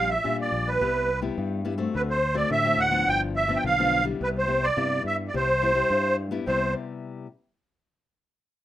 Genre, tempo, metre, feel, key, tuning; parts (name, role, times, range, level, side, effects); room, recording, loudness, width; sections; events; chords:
samba; 106 BPM; 4/4; straight; C major; A4 = 441 Hz
musette accordion; melody; 0.0-6.7 s; B4 to G5; -23 LUFS; right 2 dB
nylon-string guitar; accompaniment; 0.0-7.3 s; G2 to F#4; -30 LUFS; left 5 dB
growling fingered electric bass; bass; 0.0-6.7 s; G1 to D3; -31 LUFS; equal; overdrive
moderate studio ambience, RT60 0.5 s; rough home demo mix; -22 LUFS; side -13 dB against mid
0.0-6.5 A section; 6.5-8.6 B section
0.0 Gm7/Bb; 0.8 Cmaj7; 1.9 D7; 3.1 G7; 4.2 Cmaj7